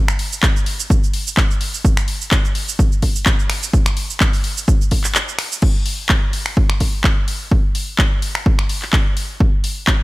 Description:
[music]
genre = house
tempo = 127 BPM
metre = 4/4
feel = swing 54% on 16ths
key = none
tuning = none
[part]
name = house drum kit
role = drums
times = 0.1-10.0 s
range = cabasa, crash cymbal, finger snaps, handclaps, hi-hat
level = -20 LUFS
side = equal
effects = sidechain pumping on perc, small room ambience, sidechain pumping on hats, sidechain pumping on cymbals
[part]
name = electronic kick drum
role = drums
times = 0.4-10.0 s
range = none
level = -16 LUFS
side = equal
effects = small room ambience
[sound]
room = little or no reverb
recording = none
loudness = -15 LUFS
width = side -20 dB against mid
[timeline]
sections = 0.0-5.6 A section; 5.6-10.0 B section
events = drop 0.0-5.6; break 5.2-5.6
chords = none

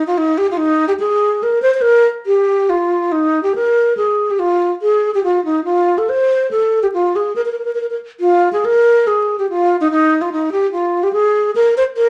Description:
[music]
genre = italian folk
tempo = 142 BPM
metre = 3/4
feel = straight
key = Eb major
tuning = A4 = 443 Hz
[part]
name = breathy wooden-headed alto flute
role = solo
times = 0.0-12.1 s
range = Eb4 to C5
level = -15 LUFS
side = equal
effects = none
[sound]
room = moderate club reverb, RT60 0.7 s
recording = vinyl crackle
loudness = -15 LUFS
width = mono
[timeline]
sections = 0.0-12.1 A section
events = none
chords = none

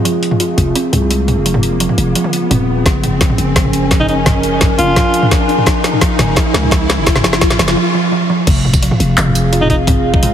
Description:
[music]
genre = half-time drum and bass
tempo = 171 BPM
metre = 4/4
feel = half-time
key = F phrygian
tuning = A4 = 440 Hz
[part]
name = dark analog pad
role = sustained chords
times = 0.0-10.3 s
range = C4 to Ab5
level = -20 LUFS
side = equal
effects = chorus, sidechain pumping
[part]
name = kalimba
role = arpeggios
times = 0.0-10.3 s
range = F3 to F4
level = -19 LUFS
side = right 4 dB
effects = low-pass filter, tape echo
[part]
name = riser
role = sound effects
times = 0.0-7.8 s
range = none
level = -21 LUFS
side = left 2 dB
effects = none
[part]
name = drum and bass drum kit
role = drums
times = 0.1-10.3 s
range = crash cymbal, handclaps, hi-hat, snare drum, tambourine, toms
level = -16 LUFS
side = equal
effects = overdrive, small room ambience
[part]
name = growling 808-style bass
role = bass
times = 0.6-10.3 s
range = Eb1 to Db2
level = -17 LUFS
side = left 1 dB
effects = none
[part]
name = electronic kick drum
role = drums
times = 2.9-10.2 s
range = none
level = -15 LUFS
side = left 1 dB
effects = overdrive, small room ambience
[part]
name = breathy alto saxophone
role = melody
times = 4.0-5.3, 9.6-9.8 s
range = Eb4 to F4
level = -19 LUFS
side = equal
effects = vintage 12-bit sampler grit, low-pass filter, dub echo
[sound]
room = light reverb, digital ambience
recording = heavily compressed radio sound, multiband compression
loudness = -10 LUFS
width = side -9 dB against mid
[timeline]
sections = 0.0-8.5 A section; 8.5-10.3 B section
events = build-up 0.0-8.5; riser 0.0-7.8; filter sweep on kalimba 0.0-8.5; filter sweep on alto saxophone 0.0-8.5; drum fill 2.9-7.8; break 7.8-8.5; drop 8.5-10.3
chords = 0.0 Fm; 2.9 Gbadd9; 8.5 Fm

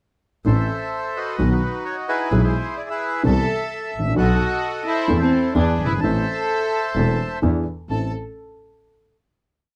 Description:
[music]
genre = tango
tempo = 129 BPM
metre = 4/4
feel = rubato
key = A harmonic minor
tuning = A4 = 440 Hz
[part]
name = bandoneon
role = melody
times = 0.5-8.1 s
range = D#4 to A5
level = -27 LUFS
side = equal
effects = slapback echo
[part]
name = dark grand piano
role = accompaniment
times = 0.5-8.1 s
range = E1 to A4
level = -24 LUFS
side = equal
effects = none
[part]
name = bright double bass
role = bass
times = 0.5-8.1 s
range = E1 to E2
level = -24 LUFS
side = equal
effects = none
[part]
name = rich chamber violin section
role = second line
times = 3.3-8.1 s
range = C4 to A4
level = -27 LUFS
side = equal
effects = none
[sound]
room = light reverb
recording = dry, close 1970s-style studio recording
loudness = -21 LUFS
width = mono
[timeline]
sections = 0.5-7.9 A section; 7.9-9.8 final chord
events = none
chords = 0.5 Am; 1.4 B; 2.3 E/B; 3.3 Amadd9/C; 4.2 B7; 5.1 Am/E; 5.6 E7; 6.0 Am; 7.4 E7; 7.9 Am

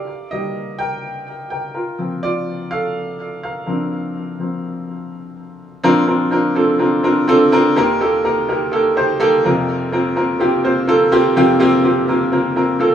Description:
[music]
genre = pop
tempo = 125 BPM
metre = 4/4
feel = straight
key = unclear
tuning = A4 = 440 Hz
[part]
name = warm upright piano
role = solo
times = 0.0-12.9 s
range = Eb2 to G5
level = -15 LUFS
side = equal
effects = digital delay
[sound]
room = moderate studio reverb, RT60 0.6 s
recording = band playing live in one room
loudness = -14 LUFS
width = side -9 dB against mid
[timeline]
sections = 0.0-5.8 A section; 5.8-12.9 B section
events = upright piano solo 0.0-5.8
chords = 0.1 Eb; 1.8 Fsus4; 5.8 Bbadd9; 7.8 Eb; 9.4 Fsus4

